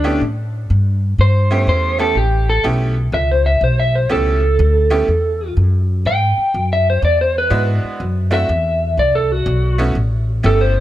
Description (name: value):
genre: electric blues shuffle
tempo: 123 BPM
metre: 4/4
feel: swing 67% on 8ths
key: A mixolydian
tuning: A4 = 440 Hz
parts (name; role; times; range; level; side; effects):
- electric guitar through a small old amp; melody; 0.0-10.8 s; D4 to G5; -17 LUFS; equal; lush chorus
- tack piano; accompaniment; 0.0-10.7 s; G#3 to G4; -23 LUFS; right 2 dB; none
- upright bass; bass; 0.0-10.8 s; G1 to A2; -16 LUFS; equal; none
room: little or no reverb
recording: none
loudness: -14 LUFS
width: side -13 dB against mid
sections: 0.0-10.8 A section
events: clean electric guitar solo 0.0-10.8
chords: 0.2 A9; 6.0 E9; 8.0 D9 (rootless); 9.9 A9